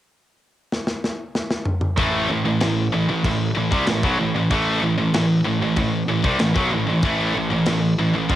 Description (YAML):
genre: heavy metal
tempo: 95 BPM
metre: 4/4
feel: straight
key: A minor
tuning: A4 = 440 Hz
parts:
  - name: tight metal drum kit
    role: drums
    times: 0.7-8.4 s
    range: crash cymbal, kick drum, snare drum, toms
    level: -25 LUFS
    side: left 1 dB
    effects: cassette tape
  - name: heavy high-gain guitar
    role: riff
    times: 2.0-8.4 s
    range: A2 to F4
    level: -23 LUFS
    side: left 6 dB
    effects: distortion
  - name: scooped high-gain guitar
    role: riff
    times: 2.0-8.4 s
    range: A2 to F4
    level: -21 LUFS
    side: right 4 dB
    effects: distortion
  - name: fuzz picked electric bass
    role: bass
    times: 2.0-8.4 s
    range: A1 to F2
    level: -25 LUFS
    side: left 1 dB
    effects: overdrive
room: light reverb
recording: home recording on cassette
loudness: -18 LUFS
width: side -12 dB against mid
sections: 0.0-2.0 A section; 2.0-8.4 B section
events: drum fill 0.7-2.0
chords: 0.0 N.C.; 2.0 Am